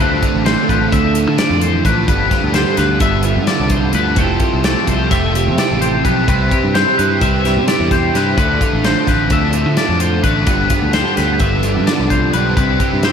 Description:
math rock and midwest emo; 258 BPM (eighths); 9/8; straight; C major; A4 = 439 Hz
twelve-string electric guitar; accompaniment; 0.0-13.1 s; G2 to B4; -19 LUFS; right 6 dB; wide subtle chorus
twangy electric guitar; arpeggios; 0.0-13.1 s; B4 to E5; -19 LUFS; left 4 dB; wide subtle chorus
crunchy overdriven guitar; riff; 0.0-13.1 s; F2 to E4; -20 LUFS; left 1 dB; ensemble chorus
picked electric bass; bass; 0.0-13.1 s; F1 to D3; -18 LUFS; equal
modern studio drum kit; drums; 0.2-13.1 s; hi-hat, kick drum, snare drum; -19 LUFS; equal
wet lush hall reverb, RT60 2.1 s; dreamy mix soaked in reverb; -12 LUFS; side -7 dB against mid
0.0-13.1 A section
0.0 Dm7; 2.1 G7sus4; 4.2 Fmaj9; 6.3 Cmaj7; 8.4 Dm7; 10.5 G7sus4; 12.6 Cmaj7
0.22 0.45 0.69 0.92 1.15 1.39 1.62 1.85 | 2.08 2.32 2.55 2.78 3.02 3.25 3.48 3.71 3.95 | 4.18 4.41 4.65 4.88 5.11 5.35 5.58 5.81 6.05 | 6.28 6.51 6.75 6.98 7.21 7.44 7.68 7.91 8.14 | 8.38 8.61 8.84 9.07 9.31 9.54 9.77 10.01 10.24 | 10.47 10.70 10.94 11.17 11.40 11.63 11.87 12.10 12.33 | 12.56 12.80 13.03

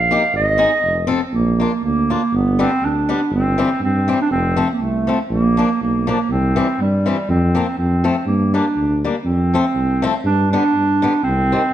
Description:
alpine folk, alpine dance band; 121 BPM; 2/4; swing 54% on 8ths; Bb major; A4 = 440 Hz
dark clarinet; melody; 0.0-11.7 s; G3 to F5; -18 LUFS; right 3 dB
mellow tuba; bass; 0.0-11.6 s; F1 to G2; -20 LUFS; equal
picked swing-style acoustic guitar; accompaniment; 0.1-11.6 s; D3 to A4; -22 LUFS; left 5 dB
moderate recital hall reverb, RT60 1.3 s; dark, warm production; -15 LUFS; side -11 dB against mid
0.0-1.3 A section; 1.3-11.7 B section
0.3 Ab; 0.8 F7; 1.3 Bb; 2.3 G; 3.3 C/G; 4.3 F; 5.3 Bb; 6.3 C; 7.3 Fsus4; 7.8 F; 8.3 Gm; 9.3 F; 10.3 G; 11.2 Cm
| 0.34 0.84 | 1.34 1.83 | 2.33 2.82 | 3.32 3.81 | 4.30 4.80 | 5.30 5.80 | 6.30 6.79 | 7.29 7.78 | 8.27 8.77 | 9.26 9.76 | 10.25 10.74 | 11.23 11.72

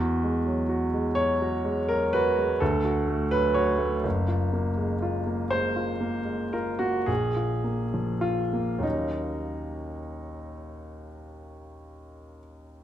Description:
classical, impressionist solo piano; 32-44 BPM (dotted quarters); 9/8; rubato; Eb dorian; A4 = 440 Hz
clear baby grand piano; solo; 0.0-12.8 s; Gb1 to Db5; -25 LUFS; equal
wet recital hall reverb, RT60 1.6 s; minimal, uncompressed stereo recording; -24 LUFS; side -11 dB against mid
0.0-12.8 A section
0.0 Eadd9; 2.6 D; 4.0 Gbmaj9; 7.1 Bb5; 8.8 Ebm7
1.17 2.61 | 4.04 5.54 7.09 | 8.84 10.66 12.39

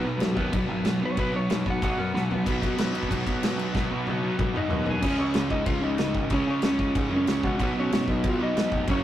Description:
punk rock; 187 BPM; 4/4; straight; Db mixolydian from 5.0 s; A4 = 440 Hz
lightly driven lead guitar; melody; 0.0-2.5, 4.6-9.0 s; Db4 to Ab5; -30 LUFS; equal
distorted electric guitar; riff; 0.0-9.0 s; Gb2 to Eb4; -33 LUFS; left 1 dB; distortion
distorted electric guitar; riff; 0.0-9.0 s; Gb2 to Db4; -32 LUFS; equal; distortion
sludgy distorted guitar; riff; 0.0-9.0 s; Gb2 to Db4; -30 LUFS; right 1 dB; overdrive
overdriven picked electric bass; bass; 0.0-9.0 s; F1 to Db3; -32 LUFS; equal
loose indie drum kit; drums; 0.2-8.9 s; crash cymbal, kick drum, snare drum, toms; -29 LUFS; equal
moderate booth ambience, RT60 0.2 s; rough rehearsal-room recording, tube saturation; -23 LUFS; side -12 dB against mid
0.0-2.5 A section; 2.5-5.0 B section; 5.0-9.0 C section
lead electric guitar solo 0.0-2.5; drum fill 2.1-2.5, 3.7-5.0
0.0 Cb5; 2.5 Cb; 5.0 Db; 7.6 Cb
0.21 0.54 0.85 | 1.18 1.50 1.82 2.14 | 2.46 2.78 3.10 3.42 | 3.74 4.06 4.38 4.70 | 5.02 5.34 5.67 5.99 | 6.31 6.63 6.95 7.27 | 7.59 7.91 8.23 8.55 | 8.87

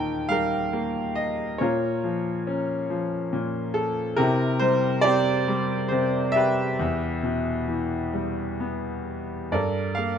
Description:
classical, lyrical solo piano; 68 BPM; 3/4; rubato; A4 = 436 Hz
clear grand piano; solo; 0.0-10.2 s; Eb2 to Bb5; -23 LUFS; equal
light reverb; -23 LUFS; side -8 dB against mid
0.0-9.5 A section
0.0 Eb; 1.6 Bbm; 4.2 C; 6.8 Em; 9.5 Gmadd9
0.73 | 1.61 2.48 3.33 | 4.19 5.05 5.93 | 6.80 7.68 8.60 | 9.52

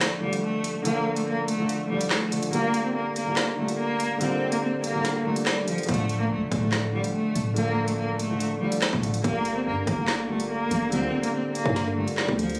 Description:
hip hop, drill; 143 BPM; 4/4; half-time; A4 = 439 Hz
rich cello; melody; 0.0-12.6 s; F3 to C4; -29 LUFS; equal; plate reverb, delay
dark concert grand piano; accompaniment; 0.0-12.6 s; D3 to A4; -32 LUFS; equal
drill drum kit; drums; 0.0-12.6 s; handclaps, hi-hat, kick drum, snare drum; -31 LUFS; equal; vintage 12-bit sampler grit
growling 808-style bass; bass; 5.9-12.6 s; D1 to G2; -32 LUFS; equal
moderate studio reverb, RT60 0.5 s; recorded on a phone in the room, studio reverb, compression; -26 LUFS; mono
0.0-12.6 A section
break 0.0-5.9
0.0 Dm; 2.5 Gm7; 5.9 Dm; 9.2 Gm7
0.01 0.43 | 0.85 1.27 1.69 2.11 | 2.53 2.95 3.37 3.79 | 4.21 4.63 5.05 5.47 | 5.89 6.31 6.72 7.14 | 7.56 7.98 8.40 8.82 | 9.24 9.66 10.08 10.50 | 10.92 11.34 11.76 12.18

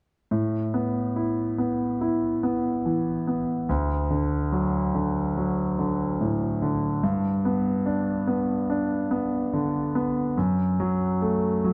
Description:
pop; 72 BPM; 4/4; straight; A4 = 440 Hz
clear concert grand piano; accompaniment; 0.3-11.7 s; D2 to E4; -25 LUFS; equal
moderate lush hall reverb, RT60 2.5 s; dark, warm production; -26 LUFS; mono
0.3-11.7 A section
0.3 Asus2; 3.7 D; 7.0 G; 10.4 D/F# (rootless)
| 0.32 1.16 2.00 2.85 | 3.69 4.53 5.36 6.20 | 7.03 7.87 8.70 9.54 | 10.38 11.22

